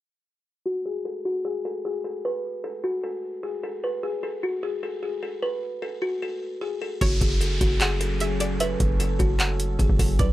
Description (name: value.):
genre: hip hop, trap.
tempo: 151 BPM.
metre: 4/4.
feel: half-time.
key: F# minor.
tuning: A4 = 439 Hz.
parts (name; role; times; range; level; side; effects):
buzzing kalimba; melody; 0.7-10.3 s; F#4 to B4; -28 LUFS; left 1 dB; low-pass filter, analog delay.
string-like resonator pluck; second line; 7.0-10.3 s; C#5 to F#5; -30 LUFS; right 1 dB; chorus.
deep dark ambient pad; sustained chords; 7.6-10.3 s; F#3 to G#5; -32 LUFS; right 1 dB; chorus, built-in reverb.
hard-hitting 808-style bass; bass; 7.0-10.3 s; F#1 to B1; -25 LUFS; equal; none.
booming analog drum machine; drums; 7.0-10.3 s; handclaps, hi-hat, kick drum; -22 LUFS; equal; overdrive.
downlifter; sound effects; 7.0-10.2 s; none; -35 LUFS; equal; none.
room: little or no reverb.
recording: dry, gritty hardware recording, transformer saturation.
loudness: -24 LUFS.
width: side -15 dB against mid.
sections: 0.7-7.0 A section; 7.0-10.3 B section.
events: filter sweep on kalimba 0.7-7.0.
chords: 0.7 N.C.; 7.0 F#madd9.